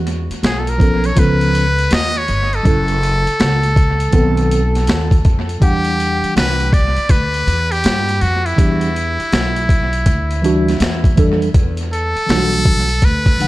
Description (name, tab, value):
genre	hip hop, jazz-hop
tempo	81 BPM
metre	4/4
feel	swing 65% on 16ths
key	E minor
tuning	A4 = 440 Hz
part	upright bass	bass	0.0-13.5 s	F#1 to G2	-18 LUFS	equal	none
part	boom bap sampler-style drum kit	drums	0.1-13.5 s	hi-hat, kick drum, snare drum	-16 LUFS	equal	none
part	trumpet with metal mute	melody	0.5-13.5 s	E4 to D#5	-19 LUFS	equal	analog delay
part	mellow tine electric piano	accompaniment	0.8-13.5 s	D#3 to F#5	-19 LUFS	right 1 dB	medium stereo tremolo
room	light reverb, digital ambience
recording	echo-heavy mix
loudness	-13 LUFS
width	side -17 dB against mid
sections	0.0-11.5 A section; 11.5-13.5 B section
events	muted trumpet solo 11.5-13.5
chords	0.0 E5; 1.2 C#7b13; 2.7 F#m7; 4.1 B7b9; 5.6 Em9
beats	0.43 1.17 1.91 | 2.65 3.39 4.13 4.88 | 5.62 6.36 7.10 7.84 | 8.58 9.32 10.06 10.80 | 11.54 12.28 13.02